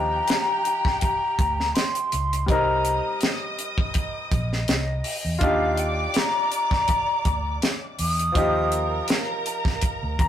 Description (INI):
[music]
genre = lush 1970s-style soul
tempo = 82 BPM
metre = 4/4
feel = swing 54% on 16ths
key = Eb major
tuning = A4 = 440 Hz
[part]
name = breathy hollow jazz flute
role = melody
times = 0.0-10.3 s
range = Eb4 to Eb6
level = -25 LUFS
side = left 1 dB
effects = none
[part]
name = warm symphonic string section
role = second line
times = 0.0-10.3 s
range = G4 to Eb6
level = -32 LUFS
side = right 1 dB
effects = none
[part]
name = bright grand piano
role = accompaniment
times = 0.0-10.3 s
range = F3 to Bb5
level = -28 LUFS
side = left 1 dB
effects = none
[part]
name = vintage muted fingered electric bass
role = bass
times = 0.0-10.3 s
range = Bb1 to Fb2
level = -28 LUFS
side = equal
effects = none
[part]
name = tight funk drum kit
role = drums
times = 0.3-10.3 s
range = hi-hat, kick drum, snare drum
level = -24 LUFS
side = equal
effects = none
[sound]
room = moderate studio reverb, RT60 0.6 s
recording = rough rehearsal-room recording, warm saturation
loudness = -21 LUFS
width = side -10 dB against mid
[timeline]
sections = 0.0-10.3 A section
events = grand piano fill 9.8-10.3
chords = 0.0 Ebmaj9; 2.5 Cm7; 5.4 Ebmaj9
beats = 0.29 1.02 1.75 | 2.48 3.22 3.95 4.68 | 5.42 6.15 6.89 7.62 | 8.36 9.09 9.82